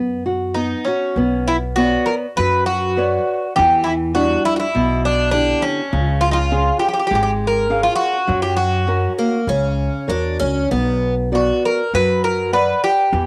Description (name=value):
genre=fado-style ballad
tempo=100 BPM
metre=4/4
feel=rubato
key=B harmonic minor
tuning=A4 = 440 Hz
part: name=nylon-string guitar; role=accompaniment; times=0.0-13.3 s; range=B2 to F#5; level=-23 LUFS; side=equal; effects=none
part: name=upright bass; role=bass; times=0.0-13.3 s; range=G#1 to F#2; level=-25 LUFS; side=equal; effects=transformer saturation
part: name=Greek bouzouki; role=melody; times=0.5-13.3 s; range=C#4 to B4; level=-20 LUFS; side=equal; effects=analog delay
part: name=picked twelve-string acoustic guitar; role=second line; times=9.2-11.1 s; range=A#3 to D4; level=-24 LUFS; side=equal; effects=none
room=moderate small room reverb, RT60 0.5 s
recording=home recording on cassette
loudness=-18 LUFS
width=mono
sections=0.0-1.2 A section; 1.2-13.3 B section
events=none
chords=0.0 B5; 1.2 Bmadd9; 3.6 Em7; 5.9 C#; 8.3 F#; 10.7 Bm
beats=0.53 | 1.15 1.77 2.37 2.98 | 3.58 4.17 4.76 5.35 | 5.93 6.52 7.11 7.69 | 8.27 8.86 9.46 10.08 | 10.70 11.32 11.92 12.51 | 13.11